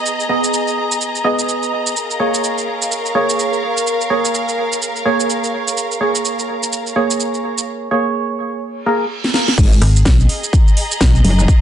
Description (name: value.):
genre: bass house.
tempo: 126 BPM.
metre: 4/4.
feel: swing 59% on 16ths.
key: unclear.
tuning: A4 = 439 Hz.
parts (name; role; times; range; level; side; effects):
percussive organ stab; stabs; 0.0-9.1 s; A#3 to D#5; -18 LUFS; right 2 dB; lush chorus, sidechain pumping, digital delay.
warm symphonic string section; texture; 0.0-11.6 s; G#4 to A#5; -22 LUFS; left 2 dB; sidechain pumping.
house drum kit; drums; 0.1-11.6 s; crash cymbal, hi-hat, rim click, shaker, snare drum; -20 LUFS; right 2 dB; none.
reverse cymbal; sound effects; 9.0-9.6 s; none; -23 LUFS; right 7 dB; none.
metallic wobble bass; bass; 9.6-11.5 s; F#1 to G#1; -13 LUFS; equal; chorus, tube saturation, sidechain pumping.
electronic kick drum; drums; 9.6-11.6 s; none; -12 LUFS; equal; none.
metallic FM bass; bass; 9.8-11.2 s; G#1 to B1; -12 LUFS; equal; overdrive, sidechain pumping.
room: light reverb, digital ambience.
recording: nothing above 10.9 kHz.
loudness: -14 LUFS.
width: side -10 dB against mid.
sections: 0.0-9.6 A section; 9.6-11.6 B section.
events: reverse cymbal 9.0-9.6; drum fill 9.2-9.6; drop 9.6-11.6.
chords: 0.0 G#m; 2.0 A#m7; 9.6 G#m.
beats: | 0.05 0.53 1.01 1.48 | 1.96 2.44 2.91 3.39 | 3.86 4.34 4.82 5.29 | 5.77 6.24 6.72 7.20 | 7.67 8.15 8.62 9.10 | 9.58 10.05 10.53 11.01 | 11.48.